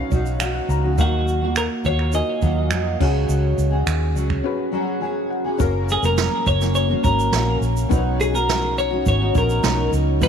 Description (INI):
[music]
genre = acoustic pop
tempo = 104 BPM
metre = 4/4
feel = straight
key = F# major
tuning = A4 = 440 Hz
[part]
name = felt-muted upright piano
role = accompaniment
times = 0.0-10.3 s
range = A#3 to A#5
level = -30 LUFS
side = left 13 dB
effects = none
[part]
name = fingerpicked steel-string acoustic guitar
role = accompaniment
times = 0.0-10.3 s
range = C#3 to A#4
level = -24 LUFS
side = right 1 dB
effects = double-tracked left and right
[part]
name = vintage muted fingered electric bass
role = bass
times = 0.1-10.3 s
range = E#1 to E#2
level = -21 LUFS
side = equal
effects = none
[part]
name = jazz brush drum kit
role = drums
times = 0.1-10.3 s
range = crash cymbal, finger snaps, kick drum, shaker, snare drum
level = -25 LUFS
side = right 3 dB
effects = none
[part]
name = twelve-string electric guitar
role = melody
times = 1.0-10.3 s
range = F#4 to D#5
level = -23 LUFS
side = equal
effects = tape echo
[sound]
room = studio ambience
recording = 1960s-style stereo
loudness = -18 LUFS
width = side -7 dB against mid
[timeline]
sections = 0.0-5.6 A section; 5.6-10.3 B section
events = felt piano fill 0.0-1.0, 4.4-5.6; break 4.4-5.6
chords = 0.0 Badd9; 1.0 D#madd9; 3.0 C#sus4; 5.6 F#; 7.9 Badd9